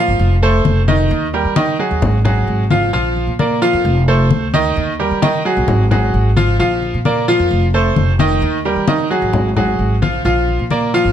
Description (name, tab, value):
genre	latin, Cuban son and guajira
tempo	131 BPM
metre	4/4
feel	straight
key	unclear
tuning	A4 = 442 Hz
part	bright grand piano	arpeggios	0.0-11.1 s	Eb3 to F5	-15 LUFS	right 1 dB	none
part	upright bass	bass	0.0-11.1 s	F1 to Eb3	-17 LUFS	equal	none
part	congas	percussion	0.2-11.1 s	none	-20 LUFS	left 4 dB	none
room	light reverb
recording	none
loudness	-12 LUFS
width	side -10 dB against mid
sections	0.0-2.9 A section; 2.9-11.1 A section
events	none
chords	0.2 F7; 1.1 Eb; 2.0 Gbsus2/Ab; 2.9 Bb; 3.9 F7; 4.8 Eb; 5.7 Gbsus2/Ab; 6.6 Bb; 7.5 F7; 8.4 Eb; 9.3 Gbmaj9/Ab; 10.2 Bb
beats	0.19 0.65 | 1.11 1.56 2.02 2.48 | 2.94 3.39 3.85 4.31 | 4.76 5.22 5.68 6.14 | 6.59 7.05 7.51 7.96 | 8.42 8.88 9.34 9.79 | 10.25 10.71